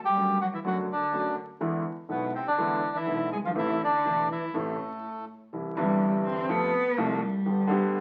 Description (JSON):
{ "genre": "tango", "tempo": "124 BPM", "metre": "4/4", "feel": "rubato", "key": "A minor", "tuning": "A4 = 442 Hz", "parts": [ { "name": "bandoneon", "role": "melody", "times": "0.0-5.3 s", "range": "A3 to G#4", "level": "-30 LUFS", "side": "equal", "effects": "none" }, { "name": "warm cello", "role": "second line", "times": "0.1-8.0 s", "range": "A2 to C4", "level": "-33 LUFS", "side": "equal", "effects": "none" }, { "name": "warm baby grand piano", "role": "accompaniment", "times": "0.2-8.0 s", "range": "E1 to G4", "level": "-32 LUFS", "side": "equal", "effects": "none" }, { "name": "upright bass", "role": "bass", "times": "0.2-8.0 s", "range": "E1 to F2", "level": "-49 LUFS", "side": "equal", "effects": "none" } ], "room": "wet studio reverb, RT60 0.8 s", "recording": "very old 78 rpm record, vinyl crackle", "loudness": "-28 LUFS", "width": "mono", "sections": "0.0-5.5 A section; 5.5-8.0 B section", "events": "stop 5.0-5.5; cello solo 5.5-8.0", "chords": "0.0 D/F#; 1.6 E7; 3.6 Am; 5.5 C; 6.5 F; 7.5 G" }